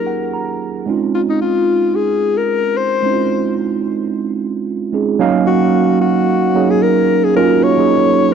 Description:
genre	amapiano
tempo	111 BPM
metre	4/4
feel	swing 55% on 16ths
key	unclear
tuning	A4 = 441 Hz
part	warm alto saxophone	melody	0.0-8.3 s	Eb4 to Db5	-16 LUFS	left 7 dB	low-pass filter, cassette tape, tape echo
part	mellow tine electric piano	accompaniment	0.0-8.3 s	Gb3 to Bb5	-15 LUFS	right 7 dB	lush chorus, low-pass filter
room	moderate lush hall reverb, RT60 2.9 s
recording	home recording on cassette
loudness	-13 LUFS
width	side -7 dB against mid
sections	0.0-5.2 A section; 5.2-8.3 B section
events	tine electric piano fill 0.0-0.9; filter sweep 0.0-5.2; drop 5.2-8.3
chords	0.0 Ebm7; 0.9 Dbmaj9; 5.2 Ebm7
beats	0.33 | 0.87 1.41 1.95 2.49 | 3.03 3.57 4.11 4.65 | 5.20 5.74 6.28 6.82 | 7.36 7.90

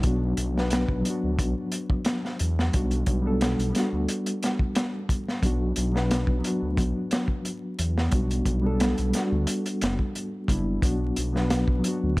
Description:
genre	trip hop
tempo	89 BPM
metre	4/4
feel	swing 53% on 16ths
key	B minor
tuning	A4 = 440 Hz
part	mellow reed electric piano	accompaniment	0.0-12.2 s	F#3 to B4	-27 LUFS	equal	fast tremolo, harmonic tremolo, tape echo
part	dark detuned saw bass	bass	0.0-12.2 s	F#1 to E2	-26 LUFS	equal	none
part	crunchy breakbeat drum kit	drums	0.0-12.2 s	hi-hat, kick drum, snare drum	-27 LUFS	equal	none
room	light reverb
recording	vinyl crackle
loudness	-23 LUFS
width	side -22 dB against mid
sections	0.0-12.2 A section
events	none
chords	0.0 Bm; 2.7 Gmaj7/B; 5.4 Bm; 8.1 Gmaj7/B; 10.8 Bm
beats	| 0.04 0.71 1.39 2.06 | 2.74 3.41 4.08 4.76 | 5.43 6.11 6.78 7.46 | 8.13 8.80 9.48 10.15 | 10.83 11.50 12.17

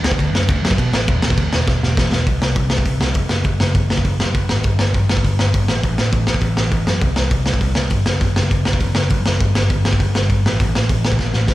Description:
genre	punk rock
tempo	202 BPM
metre	4/4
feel	straight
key	unclear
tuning	A4 = 441 Hz
part	overdriven picked electric bass	bass	0.0-11.5 s	E1 to B2	-18 LUFS	equal	none
part	raw garage drum kit	drums	0.0-11.5 s	crash cymbal, hi-hat, kick drum, snare drum	-18 LUFS	equal	none
room	little or no reverb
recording	live gig heard through the venue's PA, recital hall reverb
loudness	-15 LUFS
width	side -16 dB against mid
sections	0.0-2.3 A section; 2.3-11.5 B section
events	drum fill 1.7-2.3, 11.2-11.5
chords	none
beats	0.18 0.48 0.78 | 1.07 1.37 1.67 1.96 | 2.26 2.56 2.85 3.15 | 3.45 3.75 4.04 4.34 | 4.64 4.94 5.23 5.53 | 5.83 6.13 6.42 6.72 | 7.02 7.32 7.61 7.91 | 8.21 8.51 8.80 9.10 | 9.40 9.69 9.99 10.29 | 10.59 10.88 11.18 11.47

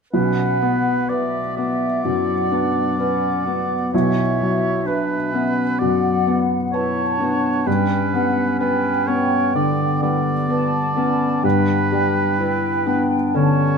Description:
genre	cinematic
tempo	64 BPM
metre	4/4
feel	rubato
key	B minor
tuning	A4 = 441 Hz
part	clear oboe	second line	0.1-13.8 s	B4 to D5	-25 LUFS	right 3 dB	none
part	mellow large flute ensemble	second line	0.1-13.8 s	E5 to A5	-25 LUFS	right 1 dB	none
part	warm clarinet	second line	0.1-13.8 s	B3 to E4	-26 LUFS	equal	none
part	felt-muted upright piano	accompaniment	0.1-13.8 s	B1 to B4	-21 LUFS	equal	none
part	concert harp	arpeggios	0.1-13.8 s	G2 to B4	-26 LUFS	left 5 dB	none
room	wet stone room reverb, RT60 1.0 s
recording	none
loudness	-17 LUFS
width	side -5 dB against mid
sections	0.1-13.8 A section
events	none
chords	0.1 Bm; 7.7 G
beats	| 0.14 1.09 2.04 2.98 | 3.93 4.87 5.80 6.73 | 7.67 8.60 9.55 10.49 | 11.44 12.40 13.35

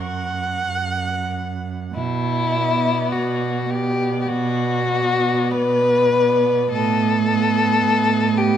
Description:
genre	classical, slow romantic movement for string quartet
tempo	45-55 BPM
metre	4/4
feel	rubato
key	B minor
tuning	A4 = 436 Hz
part	muted violin	melody	0.0-8.6 s	D5 to C#6	-35 LUFS	left 12 dB	none
part	muted violin	second line	0.0-8.6 s	E4 to B4	-19 LUFS	left 3 dB	none
part	muted viola	accompaniment	0.0-8.6 s	B3 to F#5	-25 LUFS	right 1 dB	none
part	muted cello	bass	0.0-8.6 s	F#2 to B2	-23 LUFS	right 6 dB	none
room	moderate scoring stage reverb, RT60 1.9 s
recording	none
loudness	-17 LUFS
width	side -9 dB against mid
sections	0.0-1.9 A section; 1.9-8.6 B section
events	none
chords	0.0 F#; 1.9 Bm; 6.7 B7/A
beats	0.66 | 1.95 3.13 4.30 5.54 | 6.71 7.83

